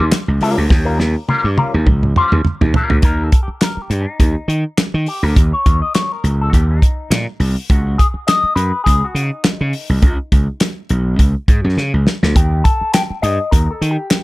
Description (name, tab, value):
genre	funk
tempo	103 BPM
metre	4/4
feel	swing 56% on 16ths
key	Eb mixolydian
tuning	A4 = 439 Hz
part	electric guitar with an envelope filter	accompaniment	0.0-14.2 s	G3 to G5	-20 LUFS	left 3 dB	wah, spring reverb
part	gritty slap bass	bass	0.0-14.0 s	Cb2 to Eb3	-16 LUFS	equal	overdrive
part	damped 70s drum kit	drums	0.1-14.2 s	handclaps, hi-hat, kick drum, snare drum, toms	-14 LUFS	equal	none
room	little or no reverb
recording	none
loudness	-13 LUFS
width	side -20 dB against mid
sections	0.0-3.0 A section; 3.0-14.2 B section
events	drum fill 0.7-3.0, 11.8-12.4; clean electric guitar solo 3.0-14.2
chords	0.0 Eb9; 3.0 Eb; 7.7 Db9sus4; 12.4 Eb